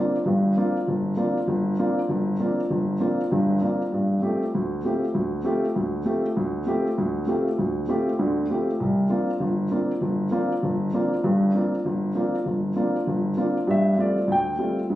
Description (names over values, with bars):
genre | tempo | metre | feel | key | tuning
jazz | 197 BPM | 4/4 | swing 61% on 8ths | unclear | A4 = 441 Hz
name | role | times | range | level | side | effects
dark baby grand piano | solo | 0.0-15.0 s | G1 to G5 | -21 LUFS | equal | none
room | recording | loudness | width
wet small room ambience, RT60 0.5 s | recorded on a phone in the room, studio reverb, compression | -21 LUFS | side -14 dB against mid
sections
0.0-13.7 A section; 13.7-15.0 B section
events
none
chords
0.0 C9sus4; 3.9 G9sus4; 8.8 C9sus4; 13.7 G9sus4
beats
| 0.26 0.56 0.86 1.17 | 1.48 1.78 2.08 2.39 | 2.70 3.00 3.31 3.61 | 3.92 4.22 4.53 4.83 | 5.14 5.44 5.75 6.05 | 6.36 6.66 6.97 7.27 | 7.58 7.88 8.19 8.49 | 8.79 9.10 9.40 9.71 | 10.01 10.32 10.62 10.93 | 11.23 11.54 11.84 12.14 | 12.45 12.75 13.06 13.36 | 13.67 13.97 14.28 14.58 | 14.88